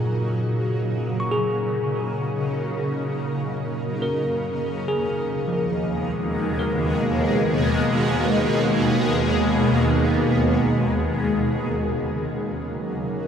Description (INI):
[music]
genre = ambient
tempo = free time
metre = none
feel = none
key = Eb minor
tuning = A4 = 441 Hz
[part]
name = shimmering ambient pad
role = sustained chords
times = 0.0-13.3 s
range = Eb2 to Bb4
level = -22 LUFS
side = equal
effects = chorus, built-in reverb, phaser
[part]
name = bell-like tine electric piano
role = arpeggios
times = 0.0-12.3 s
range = Bb2 to Db6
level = -27 LUFS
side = equal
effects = fast stereo tremolo, tape echo
[part]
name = organ-like drone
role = drone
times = 5.2-13.3 s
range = Eb3 to Bb3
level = -27 LUFS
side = right 1 dB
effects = ensemble chorus, built-in reverb
[sound]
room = wet huge ambient reverb, RT60 8.0 s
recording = dark, warm production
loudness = -20 LUFS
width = side -8 dB against mid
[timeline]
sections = 0.0-11.0 A section; 11.0-13.3 B section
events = fade-in on ambient pad 0.0-11.0; fade-out on tine electric piano 0.0-11.0; filter sweep on ambient pad 11.0-13.3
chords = 0.0 Ebm7; 4.1 Abmadd9/Eb; 11.0 Ebm7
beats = free time